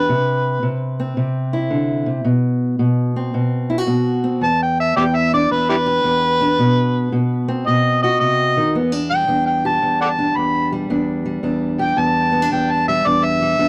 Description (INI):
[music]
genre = acoustic country blues, solo or duo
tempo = 111 BPM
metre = 4/4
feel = swing 66% on 8ths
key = E minor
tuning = A4 = 438 Hz
[part]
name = overdriven harmonica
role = melody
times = 0.0-0.8, 4.4-13.7 s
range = E4 to B5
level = -20 LUFS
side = equal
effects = none
[part]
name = fingerpicked steel-string acoustic guitar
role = accompaniment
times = 0.0-13.7 s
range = E2 to G4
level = -21 LUFS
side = equal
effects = none
[sound]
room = light reverb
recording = dry, close 1970s-style studio recording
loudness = -18 LUFS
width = mono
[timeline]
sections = 0.0-8.7 A section; 8.7-13.7 A section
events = harmonica solo 0.0-13.7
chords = 0.1 Cmaj7; 2.3 B5; 4.4 Em7; 6.6 B; 8.7 Em7